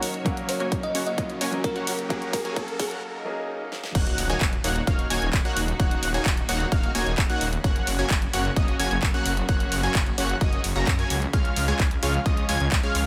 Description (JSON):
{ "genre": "EDM, festival progressive house", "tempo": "130 BPM", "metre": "4/4", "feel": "straight", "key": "Eb minor", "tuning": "A4 = 440 Hz", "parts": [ { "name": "clear baby grand piano", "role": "accompaniment", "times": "0.0-4.0 s", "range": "Gb3 to Bb4", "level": "-35 LUFS", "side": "equal", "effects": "sidechain pumping, tape echo" }, { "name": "clear studio string section", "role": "sustained chords", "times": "0.0-13.1 s", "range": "Db3 to Db5", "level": "-37 LUFS", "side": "equal", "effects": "sidechain pumping" }, { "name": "supersaw stab", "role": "riff", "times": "0.0-13.0 s", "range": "Ab3 to Bb5", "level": "-32 LUFS", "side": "equal", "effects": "sidechain pumping, low-pass filter, tape echo" }, { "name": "big-room dance drum kit", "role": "drums", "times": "0.0-13.0 s", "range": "crash cymbal, handclaps, hi-hat, snare drum", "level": "-32 LUFS", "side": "equal", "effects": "studio reverb" }, { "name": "riser, swell and impact", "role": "sound effects", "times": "0.2-5.8 s", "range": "none", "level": "-39 LUFS", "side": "equal", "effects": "none" }, { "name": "electronic kick drum", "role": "drums", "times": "0.3-12.8 s", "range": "none", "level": "-27 LUFS", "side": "equal", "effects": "studio reverb" }, { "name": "bell-like FM electric piano", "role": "melody", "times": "0.5-2.9 s", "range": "Ab4 to Eb5", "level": "-35 LUFS", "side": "equal", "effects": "chorus, phaser, tape echo" }, { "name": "unison lead", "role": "arpeggios", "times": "4.0-13.0 s", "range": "Eb6 to Bb6", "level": "-34 LUFS", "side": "equal", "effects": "sidechain pumping, tape echo" }, { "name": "detuned saw bass", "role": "bass", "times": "4.0-13.1 s", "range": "Eb1 to Gb2", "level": "-31 LUFS", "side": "equal", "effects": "sidechain pumping" } ], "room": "light reverb", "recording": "high-pass filter", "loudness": "-24 LUFS", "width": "mono", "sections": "0.0-4.0 A section; 4.0-13.1 B section", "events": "build-up 0.0-4.0; filter sweep on supersaw synth 0.0-4.0; filter sweep on string section 0.0-4.0; riser 0.2-3.0; drum fill 0.3-3.0, 3.7; break 3.0-4.0; swell 3.0-4.0; drop 4.0-13.1; impact 4.0-5.8", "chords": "0.3 Gb; 4.0 Ebm7; 7.6 Gb; 11.3 Db" }